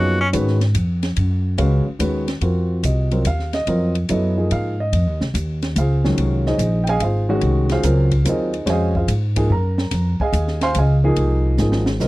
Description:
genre	modal jazz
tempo	144 BPM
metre	3/4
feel	swing 67% on 8ths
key	F phrygian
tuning	A4 = 440 Hz
part	warm upright piano	accompaniment	0.0-12.1 s	Eb3 to C6	-21 LUFS	equal	none
part	upright bass	bass	0.0-12.1 s	Ab1 to Ab2	-18 LUFS	equal	none
part	open jazz drum kit	drums	0.3-12.1 s	hi-hat, kick drum, ride cymbal, snare drum	-28 LUFS	equal	none
room	little or no reverb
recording	dry, close 1970s-style studio recording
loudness	-16 LUFS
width	side -18 dB against mid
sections	0.0-2.4 A section; 2.4-12.1 A section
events	drum fill 11.6-12.0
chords	0.0 Gbadd9; 2.4 Fm7

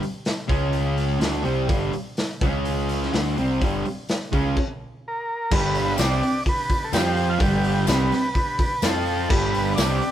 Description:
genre	garage rock duo or trio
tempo	126 BPM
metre	4/4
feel	straight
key	unclear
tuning	A4 = 440 Hz
part	fuzz guitar	riff	0.0-10.0 s	G2 to F4	-24 LUFS	equal	distortion
part	growling picked electric bass	bass	0.0-10.0 s	G1 to F2	-26 LUFS	equal	overdrive
part	raw garage drum kit	drums	0.0-10.1 s	crash cymbal, hi-hat, kick drum, snare drum	-25 LUFS	equal	none
part	overdriven combo organ	melody	5.1-10.1 s	F4 to D5	-26 LUFS	right 1 dB	none
part	combo organ	sustained chords	5.5-10.1 s	C4 to C5	-34 LUFS	equal	none
part	tambourine	percussion	6.0-9.9 s	none	-34 LUFS	left 7 dB	none
room	light reverb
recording	band playing live in one room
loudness	-20 LUFS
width	side -11 dB against mid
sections	0.0-5.5 A section; 5.5-10.1 B section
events	stop 4.6-5.5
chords	0.5 C#5; 1.2 G5; 2.4 C#5; 3.1 G5; 4.3 C#5; 5.0 N.C.; 5.5 G; 6.9 F5; 7.4 G; 8.8 F5; 9.3 G

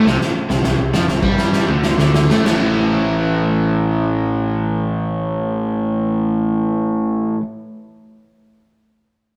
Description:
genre	hard rock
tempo	94-106 BPM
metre	4/4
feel	straight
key	A minor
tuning	A4 = 440 Hz
part	overdriven semi-hollow guitar	riff	0.0-7.4 s	A2 to A3	-20 LUFS	equal	spring reverb
part	fuzz fingered electric bass	bass	0.0-7.4 s	A1 to A2	-24 LUFS	equal	overdrive
part	huge arena drum kit	drums	0.1-2.6 s	crash cymbal, kick drum, snare drum	-22 LUFS	equal	none
room	light reverb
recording	rough rehearsal-room recording, tube saturation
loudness	-18 LUFS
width	mono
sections	0.0-2.5 A section; 2.5-7.5 B section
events	slowing down 0.0-2.5; drum fill 0.1-2.5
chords	0.0 C5; 2.5 A5

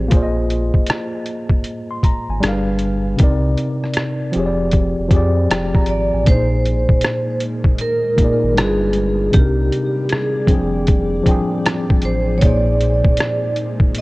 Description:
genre	lo-fi hip hop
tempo	78 BPM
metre	4/4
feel	swing 64% on 16ths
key	unclear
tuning	A4 = 439 Hz
part	tine electric piano	accompaniment	0.0-14.0 s	Bb2 to C6	-20 LUFS	equal	overdrive, fast stereo tremolo, cassette tape, low-pass filter
part	sub bass with octave	bass	0.0-13.0 s	F1 to F2	-20 LUFS	equal	transformer saturation
part	lo-fi sampler-style drum kit	drums	0.1-14.0 s	hi-hat, kick drum, rim click	-15 LUFS	equal	none
part	vibraphone with hard mallets	melody	5.9-14.0 s	G4 to D5	-21 LUFS	right 1 dB	low-pass filter
part	granular cloud pad	sustained chords	7.3-14.0 s	F3 to G5	-29 LUFS	equal	built-in reverb, low-pass filter
room	light reverb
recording	worn, warbling old tape, cassette tape, warbly pitch drift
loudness	-15 LUFS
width	side -21 dB against mid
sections	0.0-6.3 A section; 6.3-14.0 A section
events	none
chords	0.1 Bb7sus4; 2.4 G7b9; 3.2 Cm9; 4.3 Fm69; 6.3 Bb7sus4; 8.6 G7b9; 9.3 Cm9; 10.5 Fm69; 12.4 Bb7sus4

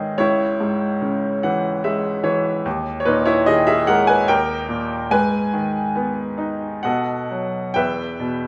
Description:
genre	classical, lyrical solo piano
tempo	63-75 BPM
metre	3/4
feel	rubato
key	G# minor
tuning	A4 = 441 Hz
part	bright baby grand piano	solo	0.0-8.5 s	C#2 to G#5	-20 LUFS	equal	none
room	moderate recital hall reverb, RT60 1.8 s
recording	recorded in a church or concert hall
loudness	-20 LUFS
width	mono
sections	0.0-7.8 A section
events	grand piano fill 1.0-2.7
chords	0.2 C#m; 2.7 D#sus4; 4.3 D#; 5.1 G#m; 6.9 B7; 7.8 Em

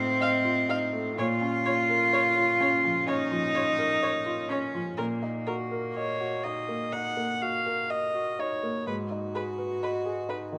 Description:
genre	neoclassical piano and strings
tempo	63 BPM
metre	4/4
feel	rubato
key	unclear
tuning	A4 = 438 Hz
part	warm cello	second line	0.0-10.6 s	A#3 to F#4	-29 LUFS	equal	none
part	felt-muted upright piano	accompaniment	0.0-10.6 s	G#2 to F5	-34 LUFS	equal	none
part	rich viola	accompaniment	0.2-10.4 s	A#4 to F#5	-35 LUFS	equal	none
room	moderate scoring stage reverb, RT60 1.9 s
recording	none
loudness	-28 LUFS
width	mono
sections	0.0-10.6 A section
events	none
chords	0.0 F7/A; 1.2 A#m; 5.0 D#m/A#; 8.9 G#m7

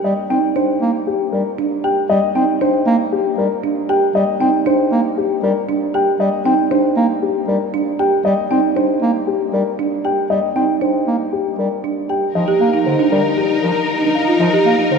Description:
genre	classical, minimalist pattern music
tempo	117 BPM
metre	4/4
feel	straight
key	Eb major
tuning	A4 = 440 Hz
part	dark grand piano	melody	0.0-15.0 s	G4 to G5	-19 LUFS	left 7 dB	none
part	mellow bass clarinet	accompaniment	0.0-15.0 s	D3 to C4	-20 LUFS	right 1 dB	none
part	folk marimba with soft mallets	arpeggios	0.3-15.0 s	D4 to G4	-19 LUFS	right 6 dB	none
part	dark French horn	second line	12.4-14.9 s	Eb4	-22 LUFS	left 2 dB	none
part	clear symphonic string section	sustained chords	12.4-15.0 s	Eb4 to Bb4	-21 LUFS	left 1 dB	none
room	wet cathedral reverb, RT60 6.0 s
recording	recorded in a church or concert hall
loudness	-14 LUFS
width	side -5 dB against mid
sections	0.0-12.4 A section; 12.4-15.0 B section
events	none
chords	0.0 Ebmaj7; 12.4 Cm9 (rootless)

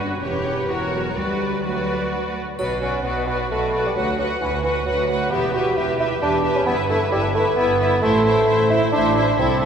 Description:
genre	classical, dramatic, fast romantic movement for symphony orchestra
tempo	132 BPM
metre	3/4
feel	straight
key	B minor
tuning	A4 = 440 Hz
part	rich symphonic violin section	melody	0.0-9.7 s	B4 to F#5	-30 LUFS	left 3 dB	none
part	clear symphonic violin section	second line	0.0-9.7 s	A4 to C5	-26 LUFS	equal	none
part	clear symphonic viola section	accompaniment	0.0-9.7 s	E4 to G4	-26 LUFS	equal	none
part	mellow French horn section	sustained chords	0.0-2.1 s	E3 to C#4	-29 LUFS	left 1 dB	none
part	clear symphonic cello section	bass	0.0-9.7 s	C2 to B2	-27 LUFS	right 2 dB	none
part	rich studio double bass section	bass	0.0-9.7 s	E1 to D2	-29 LUFS	right 3 dB	none
part	mellow bassoon	accompaniment	2.6-9.7 s	E3 to F#4	-21 LUFS	equal	none
part	triangle	percussion	2.6-3.5 s	none	-47 LUFS	left 1 dB	none
room	wet church reverb, RT60 3.0 s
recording	recorded in a church or concert hall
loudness	-18 LUFS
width	side -7 dB against mid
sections	0.0-2.6 A section; 2.6-9.7 A section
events	none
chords	0.2 C#m7b5/E; 0.7 F#7/E; 1.2 Bm/D; 2.6 Bm; 4.0 Bm/D; 5.3 Em; 6.7 Em/G; 8.0 Am

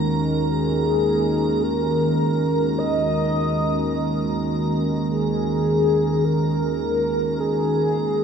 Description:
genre	dark ambient drone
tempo	free time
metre	none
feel	none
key	Eb minor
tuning	A4 = 441 Hz
part	dark analog pad	sustained chords	0.0-8.2 s	Eb3 to Bb4	-24 LUFS	right 2 dB	chorus
part	analog drone	drone	0.0-8.2 s	Eb2 to Eb3	-24 LUFS	equal	chorus
part	icy glass pad	texture	0.0-8.2 s	Bb5	-34 LUFS	right 2 dB	chorus, built-in reverb
part	mellow horn-like synth lead	melody	0.5-8.2 s	Ab4 to Eb5	-23 LUFS	left 1 dB	analog chorus, tape echo
room	wet cathedral reverb, RT60 5.6 s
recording	in a vast, echoing space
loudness	-19 LUFS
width	side -7 dB against mid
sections	0.0-8.2 A section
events	none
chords	0.0 Ebm

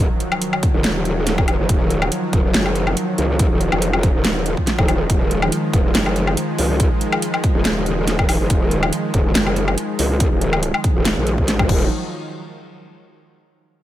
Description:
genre	heavy wobble dubstep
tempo	141 BPM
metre	4/4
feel	swing 54% on 16ths, half-time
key	Eb minor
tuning	A4 = 440 Hz
part	supersaw pad	sustained chords	0.0-11.9 s	Eb3 to Ab3	-23 LUFS	equal	sidechain pumping
part	growl bass	bass	0.0-11.9 s	Eb1 to Db2	-20 LUFS	equal	chorus, overdrive
part	dubstep drum kit	drums	0.2-11.8 s	crash cymbal, hi-hat, snare drum, woodblock	-22 LUFS	left 1 dB	none
part	electronic kick drum	drums	0.6-11.8 s	none	-18 LUFS	equal	none
room	digital ambience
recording	none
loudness	-16 LUFS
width	side -13 dB against mid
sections	0.0-11.9 A section; 11.9-13.6 B section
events	none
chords	0.0 Ebmadd9; 11.9 N.C.

